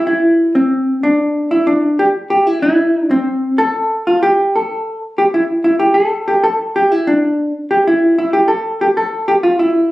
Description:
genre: andean folk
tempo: 94 BPM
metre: 2/4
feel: straight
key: A minor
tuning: A4 = 444 Hz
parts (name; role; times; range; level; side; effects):
- hollow-body jazz guitar; solo; 0.0-9.9 s; C4 to A4; -12 LUFS; equal; none
room: moderate studio reverb, RT60 0.5 s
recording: recorded on a phone in the room, club reverb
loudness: -12 LUFS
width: side -17 dB against mid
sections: 0.1-5.2 A section; 5.2-9.9 B section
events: none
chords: none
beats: | 0.07 0.70 | 1.34 1.98 | 2.62 3.25 | 3.89 4.53 | 5.16 5.80 | 6.43 7.06 | 7.70 8.33 | 8.96 9.59

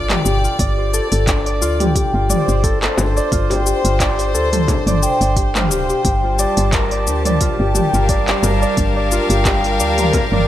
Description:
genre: organic downtempo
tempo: 88 BPM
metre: 4/4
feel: swing 55% on 16ths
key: G minor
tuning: A4 = 440 Hz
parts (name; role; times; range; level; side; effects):
- clear chamber string section; sustained chords; 0.0-10.5 s; G3 to A5; -22 LUFS; left 1 dB; sidechain pumping
- Celtic harp; arpeggios; 0.0-10.5 s; D4 to G5; -19 LUFS; equal; vintage 12-bit sampler grit, digital delay
- woody FM bass; bass; 0.0-10.5 s; D1 to D2; -19 LUFS; equal; sidechain pumping
- organic electronic drum kit; drums; 0.1-10.4 s; handclaps, hi-hat, shaker, toms; -21 LUFS; equal; overdrive
- electronic kick drum; drums; 0.6-10.3 s; none; -20 LUFS; equal; overdrive
- frame drum; percussion; 3.0-10.3 s; none; -26 LUFS; left 2 dB; none
room: light reverb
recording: none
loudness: -14 LUFS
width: side -12 dB against mid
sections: 0.0-10.5 A section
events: none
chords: 0.0 Dm/G; 6.0 Gm7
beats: | 0.59 1.27 1.96 2.64 | 3.32 4.00 4.68 5.36 | 6.05 6.73 7.41 8.09 | 8.77 9.46 10.14

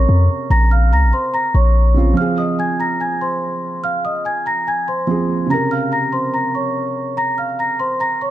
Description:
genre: hip hop, drill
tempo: 144 BPM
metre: 4/4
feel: half-time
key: Bb minor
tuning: A4 = 439 Hz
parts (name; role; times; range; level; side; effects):
- large celesta; melody; 0.0-8.3 s; C5 to Bb6; -19 LUFS; equal; digital delay
- felt-muted upright piano; accompaniment; 0.0-8.3 s; C3 to Bb4; -22 LUFS; right 3 dB; none
- long sustained 808-style bass; bass; 0.0-2.1 s; Bb1 to F2; -12 LUFS; equal; none
room: light reverb, studio reverb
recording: dark, warm production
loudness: -15 LUFS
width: side -13 dB against mid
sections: 0.0-2.2 A section; 2.2-8.3 B section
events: none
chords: 0.0 Bbmadd9; 2.2 Fm; 5.5 Bbmadd9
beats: 0.09 | 0.50 0.92 1.34 1.75 | 2.17 2.59 3.00 3.42 | 3.84 4.25 4.67 5.09 | 5.50 5.92 6.34 6.75 | 7.17 7.59 8.00

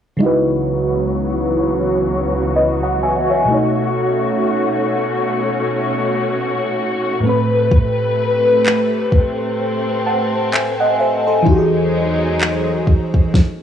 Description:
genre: contemporary R&B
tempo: 64 BPM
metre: 4/4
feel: swing 58% on 16ths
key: unclear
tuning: A4 = 441 Hz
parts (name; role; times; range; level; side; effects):
- FM electric piano with soft pad layer; accompaniment; 0.2-13.4 s; A2 to A5; -18 LUFS; equal; chorus, phaser, low-pass filter, cassette tape
- warm studio string section; sustained chords; 0.2-13.3 s; C#2 to B4; -18 LUFS; left 1 dB; sidechain pumping, low-pass filter, cassette tape
- smooth R&B drum kit; drums; 7.7-13.6 s; handclaps, kick drum, snare drum; -14 LUFS; equal; cassette tape
room: light reverb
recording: home recording on cassette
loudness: -14 LUFS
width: side -9 dB against mid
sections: 0.2-13.6 A section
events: filter sweep 0.2-13.6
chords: 0.2 C#m11; 3.5 B9; 7.2 Amadd9; 11.5 Emaj9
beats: | 0.21 1.15 2.09 3.03 | 3.96 4.90 5.84 6.78 | 7.71 8.65 9.59 10.53 | 11.46 12.40 13.34

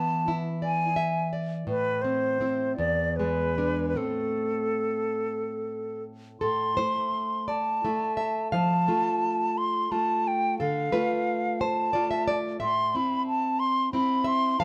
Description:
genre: romantic duo for flute and classical guitar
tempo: 48-61 BPM (dotted quarters)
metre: 6/8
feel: rubato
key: A minor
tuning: A4 = 442 Hz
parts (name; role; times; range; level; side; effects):
- bright silver concert flute; melody; 0.0-14.6 s; A4 to C6; -29 LUFS; equal; none
- nylon-string guitar; accompaniment; 0.0-14.6 s; E2 to F5; -31 LUFS; equal; none
room: light reverb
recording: close, detailed microphones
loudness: -27 LUFS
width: mono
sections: 0.0-6.4 A section; 6.4-14.6 A section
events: none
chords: 0.0 E7; 1.7 Am; 2.8 E7; 4.0 Am; 8.5 F; 10.6 Dm; 12.6 Am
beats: 0.63 | 1.68 2.78 | 3.99 5.22 | 6.42 7.49 | 8.54 9.57 | 10.60 11.61 | 12.61 13.60 | 14.59

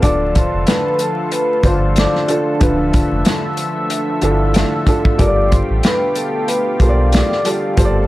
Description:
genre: hip hop, boom-bap hip-hop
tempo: 93 BPM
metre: 4/4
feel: swing 57% on 16ths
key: D dorian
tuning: A4 = 440 Hz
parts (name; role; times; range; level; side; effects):
- vibraphone with medium mallets; melody; 0.0-7.4 s; A4 to D6; -20 LUFS; left 1 dB; high-pass filter, low-pass filter, analog delay
- warm upright piano; accompaniment; 0.0-8.1 s; D3 to D5; -20 LUFS; equal; high-pass filter, low-pass filter
- lush unison pad; sustained chords; 0.0-8.1 s; B2 to E5; -22 LUFS; equal; chorus, high-pass filter, low-pass filter
- sub bass with octave; bass; 0.0-8.1 s; D1 to B1; -18 LUFS; equal; none
- warm soul drum kit; drums; 0.0-7.9 s; hi-hat, kick drum, snare drum; -16 LUFS; equal; none
room: small room ambience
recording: vinyl crackle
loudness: -13 LUFS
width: side -17 dB against mid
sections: 0.0-8.1 A section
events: none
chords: 0.0 Dm; 5.2 G9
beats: | 0.03 0.68 1.32 1.97 | 2.61 3.26 3.90 4.55 | 5.19 5.84 6.48 7.13 | 7.77

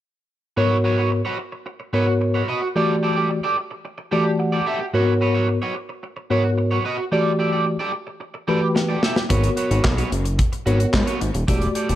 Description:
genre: early-eighties boogie funk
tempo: 110 BPM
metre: 4/4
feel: straight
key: unclear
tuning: A4 = 440 Hz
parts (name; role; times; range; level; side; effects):
- mellow tine electric piano; accompaniment; 0.6-12.0 s; G#2 to B5; -21 LUFS; left 1 dB; medium stereo tremolo
- electric guitar at the edge of break-up; riff; 0.6-12.0 s; F#4 to E5; -25 LUFS; right 3 dB; wide subtle chorus
- modern studio drum kit; drums; 8.8-12.0 s; handclaps, hi-hat, kick drum, snare drum; -22 LUFS; equal; gated reverb
- fat analog bass; bass; 9.3-12.0 s; D#1 to G#2; -21 LUFS; equal; none
room: light reverb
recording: none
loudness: -18 LUFS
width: side -13 dB against mid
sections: 0.6-12.0 A section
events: tine electric piano fill 3.8-4.9, 8.2-9.3; drum fill 8.8-9.3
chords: 0.6 G#m11; 2.8 Em11; 4.9 G#m11; 7.1 Em11; 9.3 G#m11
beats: | 0.57 1.12 1.67 2.21 | 2.76 3.30 3.85 4.39 | 4.94 5.48 6.03 6.58 | 7.12 7.67 8.21 8.76 | 9.30 9.85 10.39 10.94 | 11.48

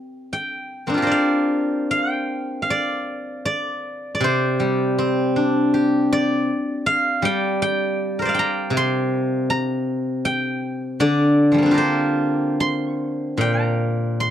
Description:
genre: chinese traditional, Chinese solo plucked strings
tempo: 78 BPM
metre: 4/4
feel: uneven beats, rubato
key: G yu mode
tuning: A4 = 439 Hz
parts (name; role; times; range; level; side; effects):
- steel-string zither; solo; 0.0-14.3 s; Bb2 to C6; -19 LUFS; equal; none
room: light reverb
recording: dry, close 1970s-style studio recording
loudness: -18 LUFS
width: side -10 dB against mid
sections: 0.0-1.1 A section; 1.1-14.3 B section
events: none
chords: none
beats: 0.33 | 1.14 1.93 2.71 3.47 | 4.22 4.99 5.74 6.49 | 7.24 7.99 8.74 9.50 | 10.26 11.02 11.80 12.61 | 13.41 14.20

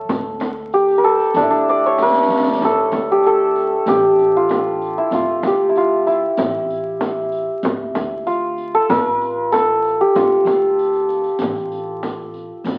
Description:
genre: Persian modal ensemble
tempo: 96 BPM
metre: 4/4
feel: straight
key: D avaz esfahan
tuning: A4 = 440 Hz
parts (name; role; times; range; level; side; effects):
- santur; melody; 0.0-12.8 s; D4 to D5; -18 LUFS; equal; none
- upright bass; bass; 0.0-12.8 s; A1 to D2; -38 LUFS; equal; none
- frame drum; percussion; 0.1-12.8 s; none; -26 LUFS; equal; none
- riq; percussion; 0.1-12.8 s; none; -30 LUFS; equal; none
room: moderate studio reverb, RT60 0.8 s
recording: very old 78 rpm record, vinyl crackle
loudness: -17 LUFS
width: mono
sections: 0.0-2.6 A section; 2.6-12.8 B section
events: drum fill 2.0-2.6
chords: none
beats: | 0.10 0.73 1.36 1.99 | 2.61 3.24 3.87 4.50 | 5.13 5.75 6.38 7.01 | 7.64 8.27 8.89 9.52 | 10.15 10.78 11.40 12.03 | 12.66

